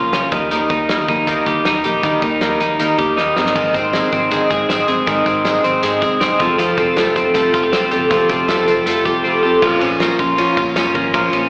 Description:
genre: jangly indie pop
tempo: 158 BPM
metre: 4/4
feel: straight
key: Bb dorian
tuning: A4 = 438 Hz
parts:
  - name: picked twelve-string acoustic guitar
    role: accompaniment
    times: 0.0-11.5 s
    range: Ab2 to A4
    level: -20 LUFS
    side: equal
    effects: slapback echo
  - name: twelve-string electric guitar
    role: arpeggios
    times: 0.0-11.5 s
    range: Eb3 to Ab4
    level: -19 LUFS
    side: equal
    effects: slapback echo
  - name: vintage muted fingered electric bass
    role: bass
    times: 0.0-11.5 s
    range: F1 to Eb3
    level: -34 LUFS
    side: equal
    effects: none
  - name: loose indie drum kit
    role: drums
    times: 0.1-11.4 s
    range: crash cymbal, hi-hat, kick drum, ride cymbal, snare drum, splash cymbal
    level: -25 LUFS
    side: equal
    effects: none
  - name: tambourine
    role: percussion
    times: 3.6-11.4 s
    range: none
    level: -40 LUFS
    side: equal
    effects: none
room: light reverb, studio reverb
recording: live gig heard through the venue's PA, recital hall reverb, AM radio sound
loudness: -16 LUFS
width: mono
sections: 0.0-9.6 A section; 9.6-11.5 B section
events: drum fill 3.2-3.6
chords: 0.3 Eb; 3.4 Ab; 6.4 Fadd9; 9.6 Bbm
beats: 0.13 | 0.51 0.89 1.27 1.65 | 2.03 2.41 2.79 3.17 | 3.56 3.94 4.32 4.69 | 5.07 5.45 5.83 6.21 | 6.59 6.97 7.35 7.73 | 8.11 8.49 8.87 9.25 | 9.62 10.00 10.38 10.76 | 11.14

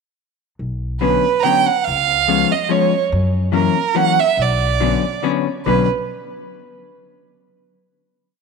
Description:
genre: musette waltz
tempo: 143 BPM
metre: 3/4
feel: swing 55% on 8ths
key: B harmonic minor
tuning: A4 = 440 Hz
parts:
  - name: upright bass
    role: bass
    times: 0.6-5.9 s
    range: B1 to F#2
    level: -21 LUFS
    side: left 1 dB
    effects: none
  - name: clear violin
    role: melody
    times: 1.0-5.9 s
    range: A#4 to A#5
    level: -17 LUFS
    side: right 10 dB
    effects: none
  - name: vintage hollow-body jazz guitar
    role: accompaniment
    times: 1.0-5.9 s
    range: D3 to C#4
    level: -20 LUFS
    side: left 12 dB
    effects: none
room: moderate plate reverb, RT60 2.5 s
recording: 1960s-style stereo with parts hard left and right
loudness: -15 LUFS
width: side -4 dB against mid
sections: 0.6-5.7 A section; 5.7-6.9 final chord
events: none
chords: 0.6 Bmadd9; 1.9 C#7; 3.1 F#7; 4.4 Bmadd9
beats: | 0.59 1.02 1.45 | 1.87 2.29 2.71 | 3.12 3.54 3.96 | 4.38 4.80 5.23 | 5.66

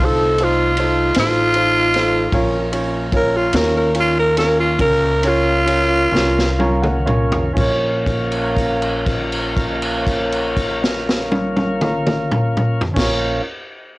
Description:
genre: slow blues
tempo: 40-52 BPM (dotted quarters)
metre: 12/8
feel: straight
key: Bb minor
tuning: A4 = 437 Hz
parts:
  - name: growling tenor saxophone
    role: melody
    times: 0.0-7.1 s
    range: F4 to Bb4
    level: -16 LUFS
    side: equal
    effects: none
  - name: clear upright piano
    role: accompaniment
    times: 0.0-13.4 s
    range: Db4 to Bb5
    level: -22 LUFS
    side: right 1 dB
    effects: cassette tape
  - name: tonewheel organ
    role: sustained chords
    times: 0.0-13.4 s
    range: A3 to F4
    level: -24 LUFS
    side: equal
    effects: slow rotary speaker, cassette tape
  - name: upright bass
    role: bass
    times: 0.0-13.4 s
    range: A1 to Eb2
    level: -23 LUFS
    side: equal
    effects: tube saturation
  - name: vintage drum kit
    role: drums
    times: 0.0-13.2 s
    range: crash cymbal, kick drum, ride cymbal, snare drum, toms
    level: -21 LUFS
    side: equal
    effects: none
room: light reverb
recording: home recording on cassette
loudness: -15 LUFS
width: side -22 dB against mid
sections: 0.0-7.6 A section; 7.6-13.6 B section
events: tenor saxophone solo 0.0-7.6; slowing down 0.8-7.6; drum fill 6.1-7.6; upright piano fill 6.1-7.6; held note 7.6-13.0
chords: 0.0 F7; 2.3 Bbm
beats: 0.01 1.17 | 2.33 3.54 4.79 6.13 | 7.57 9.07 10.57 12.08

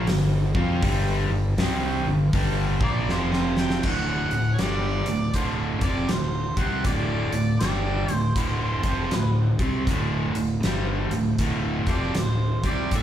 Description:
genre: blues rock power trio and southern rock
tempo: 79 BPM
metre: 4/4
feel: swing 63% on 8ths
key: unclear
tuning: A4 = 440 Hz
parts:
  - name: overdriven electric guitar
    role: riff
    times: 0.0-13.0 s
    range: D2 to F4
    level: -25 LUFS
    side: equal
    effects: slapback echo
  - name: fuzz fingered electric bass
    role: bass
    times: 0.0-13.0 s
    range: D1 to F2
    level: -27 LUFS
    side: equal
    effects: overdrive
  - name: huge arena drum kit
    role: drums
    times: 0.1-13.0 s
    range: crash cymbal, hi-hat, kick drum, snare drum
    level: -27 LUFS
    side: equal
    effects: none
  - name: warm harmonica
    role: melody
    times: 2.8-13.0 s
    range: C5 to G5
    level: -31 LUFS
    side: right 2 dB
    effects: overdrive, slapback echo
room: small room ambience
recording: live gig heard through the venue's PA, club reverb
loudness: -21 LUFS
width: side -10 dB against mid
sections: 0.0-3.8 A section; 3.8-13.0 B section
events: drum fill 3.1-3.8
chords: 0.0 G5; 3.1 F5; 3.8 D5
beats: 0.09 | 0.84 1.59 2.34 3.09 | 3.84 4.59 5.35 6.10 | 6.86 7.61 8.37 9.13 | 9.89 10.65 11.41 12.17 | 12.93

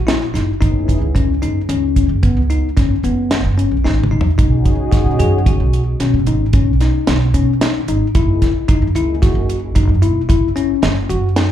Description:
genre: progressive instrumental, band music in an uneven meter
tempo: 112 BPM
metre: 7/4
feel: straight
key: F# mixolydian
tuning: A4 = 440 Hz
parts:
  - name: upright bass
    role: bass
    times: 0.0-11.5 s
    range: E1 to B2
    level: -16 LUFS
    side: right 1 dB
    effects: none
  - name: bell-like tine electric piano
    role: arpeggios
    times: 0.1-11.5 s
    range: B3 to G#4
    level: -19 LUFS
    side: left 5 dB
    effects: ping-pong delay, slapback echo
  - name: deep reggae drum kit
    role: drums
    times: 0.1-11.5 s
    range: hi-hat, kick drum, snare drum, toms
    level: -15 LUFS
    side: right 1 dB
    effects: none
  - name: dark analog pad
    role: accompaniment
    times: 0.7-9.3 s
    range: C#4 to G#4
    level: -25 LUFS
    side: equal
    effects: chorus, slapback echo
room: little or no reverb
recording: live gig heard through the venue's PA, club reverb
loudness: -13 LUFS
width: side -11 dB against mid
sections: 0.0-4.4 A section; 4.4-11.5 B section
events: drum fill 3.8-4.4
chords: 0.0 F#7sus4; 4.4 B6; 8.1 F#13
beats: 0.08 | 0.61 1.15 1.69 2.23 2.77 3.31 3.85 | 4.38 4.92 5.46 6.00 6.54 7.07 7.61 | 8.15 8.69 9.22 9.76 10.30 10.83 11.37

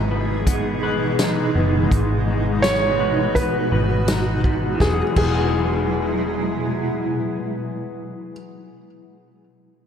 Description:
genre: dream pop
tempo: 83 BPM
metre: 4/4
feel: straight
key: E major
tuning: A4 = 440 Hz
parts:
  - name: granular cloud pad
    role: sustained chords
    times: 0.0-7.9 s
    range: B2 to G#4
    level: -23 LUFS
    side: right 1 dB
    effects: built-in reverb
  - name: electric guitar through a small old amp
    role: arpeggios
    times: 0.0-8.8 s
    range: G#2 to B4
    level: -26 LUFS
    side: left 4 dB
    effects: lush chorus, analog delay
  - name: vintage muted fingered electric bass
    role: bass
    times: 0.0-8.3 s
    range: E1 to G#1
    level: -24 LUFS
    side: equal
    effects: none
  - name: vintage drum kit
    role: drums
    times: 0.5-5.4 s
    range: crash cymbal, hi-hat, kick drum, snare drum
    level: -24 LUFS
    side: equal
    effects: none
  - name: felt-muted upright piano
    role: melody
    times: 2.6-8.3 s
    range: G#4 to C#5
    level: -23 LUFS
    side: right 2 dB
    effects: analog delay
room: wet plate reverb, RT60 2.9 s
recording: dreamy mix soaked in reverb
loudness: -18 LUFS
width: side -8 dB against mid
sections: 0.0-4.8 A section; 4.8-7.7 B section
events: none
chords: 0.0 Emaj7; 4.8 Eadd9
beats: 0.47 1.19 | 1.91 2.64 3.36 4.08 | 4.80 5.53 6.25 6.97

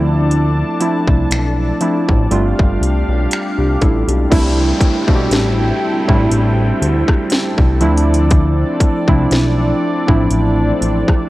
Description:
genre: contemporary R&B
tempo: 60 BPM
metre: 4/4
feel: swing 54% on 16ths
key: C major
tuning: A4 = 440 Hz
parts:
  - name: warm analog keys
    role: accompaniment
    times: 0.0-11.3 s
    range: F3 to A4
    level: -17 LUFS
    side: right 1 dB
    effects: chorus
  - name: warm analog pad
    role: sustained chords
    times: 0.0-11.3 s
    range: C4 to A5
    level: -22 LUFS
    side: left 1 dB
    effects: lush chorus, sidechain pumping
  - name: fat analog bass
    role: bass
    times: 0.0-11.0 s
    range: G1 to D2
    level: -16 LUFS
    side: equal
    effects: none
  - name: trap drum kit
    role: drums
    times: 0.3-11.3 s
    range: crash cymbal, finger snaps, hi-hat, kick drum, rim click, snare drum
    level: -15 LUFS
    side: equal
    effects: overdrive
  - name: downlifter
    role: sound effects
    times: 4.3-11.3 s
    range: none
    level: -30 LUFS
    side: equal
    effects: none
room: little or no reverb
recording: worn, warbling old tape, cassette tape, warbly pitch drift, faint mains hum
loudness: -12 LUFS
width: side -17 dB against mid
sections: 0.0-4.3 A section; 4.3-11.3 B section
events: none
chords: 0.0 Dm7; 2.3 G7sus4; 4.3 C6; 7.8 Dm7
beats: | 0.31 1.31 2.31 3.31 | 4.31 5.31 6.31 7.31 | 8.31 9.31 10.31

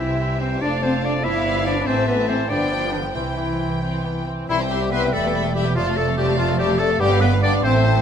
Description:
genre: quick classical-period movement for symphony orchestra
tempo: 95 BPM (dotted quarters)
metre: 6/8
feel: rubato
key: C major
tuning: A4 = 440 Hz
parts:
  - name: rich chamber violin section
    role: melody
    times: 0.0-8.0 s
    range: E5 to C6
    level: -31 LUFS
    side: left 2 dB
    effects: none
  - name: bright clarinet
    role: second line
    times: 0.0-8.0 s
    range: D4 to E5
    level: -25 LUFS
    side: left 2 dB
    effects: none
  - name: clear oboe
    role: second line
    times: 0.0-8.0 s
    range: E4 to B5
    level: -30 LUFS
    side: right 1 dB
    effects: none
  - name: large flute ensemble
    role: second line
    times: 0.0-8.0 s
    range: D5 to D6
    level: -32 LUFS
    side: right 2 dB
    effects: none
  - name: rich symphonic violin section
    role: second line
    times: 0.0-8.0 s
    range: B3 to E5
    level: -31 LUFS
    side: left 3 dB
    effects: none
  - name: warm bassoon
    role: accompaniment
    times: 0.0-8.0 s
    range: E3 to C4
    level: -30 LUFS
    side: right 2 dB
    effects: none
  - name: warm chamber viola section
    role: accompaniment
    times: 0.0-8.0 s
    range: E3 to E4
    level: -30 LUFS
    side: left 2 dB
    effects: none
  - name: mellow French horn section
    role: sustained chords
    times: 0.0-8.0 s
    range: D3 to E4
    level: -27 LUFS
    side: left 5 dB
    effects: none
  - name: clear chamber double bass section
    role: bass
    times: 0.0-8.0 s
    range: E1 to C2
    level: -24 LUFS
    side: right 2 dB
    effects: none
  - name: warm chamber cello section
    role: bass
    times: 0.0-8.0 s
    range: C2 to E4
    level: -26 LUFS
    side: right 1 dB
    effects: none
room: moderate recital hall reverb, RT60 1.9 s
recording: none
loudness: -18 LUFS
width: side -8 dB against mid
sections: 0.0-4.5 A section; 4.5-8.0 B section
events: none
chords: 0.0 C; 0.6 Dm/F; 1.2 G7; 1.9 Am; 2.5 G7; 3.1 C; 5.1 Em; 5.8 Dm/F; 7.0 G7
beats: | 0.61 1.24 | 1.87 2.50 | 3.15 3.81 | 4.49 5.13 | 5.76 6.38 | 7.00 7.64

